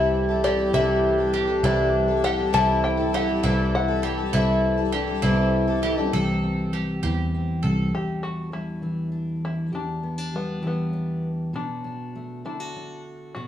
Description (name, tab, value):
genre	folk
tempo	67 BPM (dotted quarters)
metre	6/8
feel	straight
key	E minor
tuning	A4 = 436 Hz
part	open-back banjo	melody	0.0-13.5 s	B3 to A5	-28 LUFS	left 3 dB	none
part	warm French horn	second line	0.0-6.1 s	C4 to G4	-27 LUFS	right 2 dB	none
part	picked twelve-string acoustic guitar	accompaniment	0.0-6.1 s	C3 to A4	-26 LUFS	left 5 dB	none
part	dark brass ensemble	sustained chords	0.0-6.1 s	C3 to E4	-32 LUFS	left 1 dB	none
part	bowl-back mandolin	arpeggios	0.0-7.9 s	E4 to A4	-28 LUFS	right 2 dB	none
part	fingered electric bass	bass	0.0-7.9 s	C2 to E2	-26 LUFS	right 1 dB	none
part	fingerpicked steel-string acoustic guitar	accompaniment	6.1-13.5 s	E2 to G4	-27 LUFS	left 1 dB	none
room	wet large studio reverb, RT60 1.4 s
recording	band playing live in one room, small room ambience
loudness	-21 LUFS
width	side -10 dB against mid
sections	0.0-6.1 A section; 6.1-7.9 B section; 7.9-13.5 C section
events	none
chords	0.0 C6; 2.5 Am7/C; 7.9 Em7; 11.5 Bm7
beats	| 0.74 1.64 | 2.54 3.43 | 4.33 5.23 | 6.13 7.03 | 7.93 8.84 | 9.74 10.64 | 11.55 12.45 | 13.36